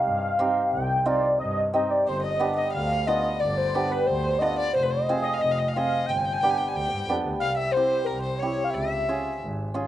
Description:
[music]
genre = klezmer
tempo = 90 BPM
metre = 2/4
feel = straight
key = G phrygian dominant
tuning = A4 = 441 Hz
[part]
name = warm velvety synth lead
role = melody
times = 0.0-9.4 s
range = Bb4 to G5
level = -25 LUFS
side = equal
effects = chorus
[part]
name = muted double bass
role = bass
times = 0.1-9.8 s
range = F1 to G2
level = -32 LUFS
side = equal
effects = none
[part]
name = hammered dulcimer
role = accompaniment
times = 0.4-9.9 s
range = B3 to Ab4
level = -28 LUFS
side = right 2 dB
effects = slapback echo
[part]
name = rich violin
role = second line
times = 2.1-9.4 s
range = Bb4 to Ab5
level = -32 LUFS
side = left 4 dB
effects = slapback echo
[sound]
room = little or no reverb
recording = recorded outdoors, with no room sound, nothing above 10.5 kHz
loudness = -22 LUFS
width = side -12 dB against mid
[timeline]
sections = 0.0-7.4 A section; 7.4-9.9 B section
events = none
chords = 0.0 Cm; 2.1 G; 4.7 Fm; 6.1 G; 7.4 C; 8.7 Db

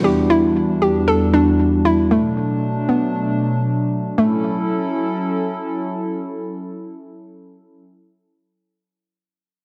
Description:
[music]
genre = amapiano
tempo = 116 BPM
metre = 4/4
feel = swing 55% on 16ths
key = F# phrygian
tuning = A4 = 439 Hz
[part]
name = hollow square pluck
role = melody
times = 0.0-7.8 s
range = A3 to A4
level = -20 LUFS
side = equal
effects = chorus, digital delay
[part]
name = mellow tine electric piano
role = accompaniment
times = 0.0-2.1 s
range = G3 to F#4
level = -20 LUFS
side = equal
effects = none
[part]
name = hollow soft pad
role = sustained chords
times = 0.0-7.8 s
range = E2 to A4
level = -23 LUFS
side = equal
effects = chorus
[sound]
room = light reverb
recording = none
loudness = -19 LUFS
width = mono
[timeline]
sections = 0.0-4.2 A section; 4.2-8.3 B section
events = none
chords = 0.0 Em7; 2.1 Bm7; 4.2 F#m7

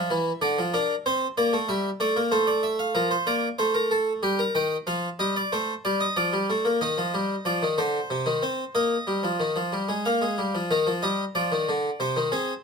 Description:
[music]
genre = classical, baroque-style two-part invention for harpsichord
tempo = 93 BPM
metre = 3/4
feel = straight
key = Bb major, Eb major from 6.8 s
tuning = A4 = 439 Hz
[part]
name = harpsichord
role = solo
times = 0.0-12.5 s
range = C3 to G5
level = -23 LUFS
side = equal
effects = none
[sound]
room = light reverb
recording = close, detailed microphones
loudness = -23 LUFS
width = side -5 dB against mid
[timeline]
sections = 0.0-6.8 A section; 6.8-10.7 B section; 10.7-12.6 C section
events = none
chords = 0.4 Bb/D; 1.1 C7; 2.3 F/A; 3.0 Bb/F; 4.2 Eb/G; 4.9 F7; 6.2 Bb/F; 6.8 Cm/Eb; 8.7 Bbsus4; 10.1 Bb5; 10.7 Eb; 12.0 Ab/C

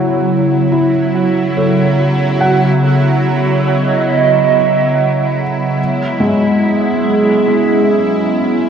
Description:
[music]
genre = ambient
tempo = 71 BPM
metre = 4/4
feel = straight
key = unclear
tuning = A4 = 443 Hz
[part]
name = warbly tape-like pad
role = sustained chords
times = 0.0-8.7 s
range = C#3 to D#5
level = -13 LUFS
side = right 1 dB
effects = chorus, built-in reverb
[part]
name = felt-muted upright piano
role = arpeggios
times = 0.0-8.7 s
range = G#3 to F#5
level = -20 LUFS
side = left 1 dB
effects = tape echo
[part]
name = bowed-like drone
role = drone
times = 0.0-8.7 s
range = F#3 to E4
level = -17 LUFS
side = right 2 dB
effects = built-in reverb, phaser
[sound]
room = wet lush hall reverb, RT60 2.5 s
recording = worn, warbling old tape, cassette tape, warbly pitch drift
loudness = -11 LUFS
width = side -7 dB against mid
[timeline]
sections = 0.0-8.7 A section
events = fade-in on felt piano 0.0-8.7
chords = 0.0 A6; 2.4 B7; 5.8 C#5

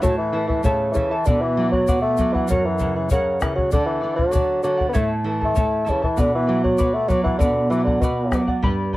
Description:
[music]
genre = andean folk, Andean ensemble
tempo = 98 BPM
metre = 2/4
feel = straight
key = B minor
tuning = A4 = 436 Hz
[part]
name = mellow bassoon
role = melody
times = 0.0-8.4 s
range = B2 to B3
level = -21 LUFS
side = equal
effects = none
[part]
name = charango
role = accompaniment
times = 0.0-9.0 s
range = E4 to B5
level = -28 LUFS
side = equal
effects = none
[part]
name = nylon-string guitar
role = accompaniment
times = 0.0-9.0 s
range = F#2 to F#3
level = -24 LUFS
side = right 2 dB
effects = none
[part]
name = bombo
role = percussion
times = 0.0-9.0 s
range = none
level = -23 LUFS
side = left 1 dB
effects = none
[part]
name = tube shaker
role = percussion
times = 0.0-8.5 s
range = none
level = -42 LUFS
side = left 7 dB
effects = none
[sound]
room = light reverb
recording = worn, warbling old tape, cassette tape, warbly pitch drift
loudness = -18 LUFS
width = side -17 dB against mid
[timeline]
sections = 0.0-8.6 A section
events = none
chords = 0.0 A; 1.3 Bm; 2.5 F#; 3.7 D; 5.0 A; 6.2 Bm

